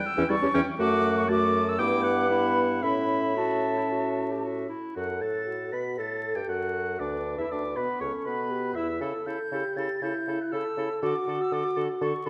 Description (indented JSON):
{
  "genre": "quick classical-period movement for wind quintet",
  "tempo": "118 BPM",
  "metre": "4/4",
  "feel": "rubato",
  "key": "unclear",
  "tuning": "A4 = 441 Hz",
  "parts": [
    { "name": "mellow hollow silver concert flute", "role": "melody", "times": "0.0-12.3 s", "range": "A5 to B6", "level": "-34 LUFS", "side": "equal", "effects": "none" },
    { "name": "clear oboe", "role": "second line", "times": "0.0-12.3 s", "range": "A4 to B5", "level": "-37 LUFS", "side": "equal", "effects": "none" },
    { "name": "clear clarinet", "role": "accompaniment", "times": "0.2-12.3 s", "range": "B3 to B4", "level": "-36 LUFS", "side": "equal", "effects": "none" },
    { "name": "mellow French horn", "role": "accompaniment", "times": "0.2-12.2 s", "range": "E3 to B4", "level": "-33 LUFS", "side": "equal", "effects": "none" },
    { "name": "mellow bassoon", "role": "bass", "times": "0.2-12.3 s", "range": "C#2 to D3", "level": "-33 LUFS", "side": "equal", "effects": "none" }
  ],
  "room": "wet recital hall reverb, RT60 1.6 s",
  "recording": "dark, warm production, vinyl crackle",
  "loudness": "-27 LUFS",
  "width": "mono",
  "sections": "0.0-5.0 A section; 5.0-12.3 B section",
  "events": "none",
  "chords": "0.0 C#dim/E; 0.8 D/F#; 1.8 Em7/G; 2.8 A; 5.0 F#madd11; 7.0 E5/D; 9.0 A7/C#; 11.0 D"
}